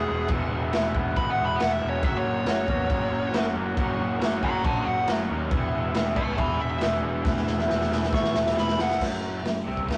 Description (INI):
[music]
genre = garage rock duo or trio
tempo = 138 BPM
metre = 4/4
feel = straight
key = F# mixolydian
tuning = A4 = 440 Hz
[part]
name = fuzz lead guitar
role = melody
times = 0.0-9.0 s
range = G#4 to C#6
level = -30 LUFS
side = equal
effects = distortion
[part]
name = raw garage guitar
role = riff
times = 0.0-10.0 s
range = F#2 to G#4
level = -31 LUFS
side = equal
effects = overdrive
[part]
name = fuzz picked electric bass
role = bass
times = 0.0-10.0 s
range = E1 to E2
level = -33 LUFS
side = equal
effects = overdrive
[part]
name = raw garage drum kit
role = drums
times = 0.3-10.0 s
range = crash cymbal, hi-hat, kick drum, snare drum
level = -29 LUFS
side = equal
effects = none
[sound]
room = moderate studio reverb, RT60 0.6 s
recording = rough rehearsal-room recording, cassette tape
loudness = -25 LUFS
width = mono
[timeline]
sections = 0.0-9.0 A section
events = lead electric guitar solo 0.0-9.0; drum fill 7.3-9.0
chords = 0.0 E; 2.0 F#; 5.5 E; 9.0 F#5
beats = | 0.28 0.72 1.16 1.59 | 2.03 2.46 2.90 3.34 | 3.77 4.21 4.65 5.08 | 5.52 5.95 6.39 6.82 | 7.26 7.69 8.13 8.56 | 9.00 9.44 9.88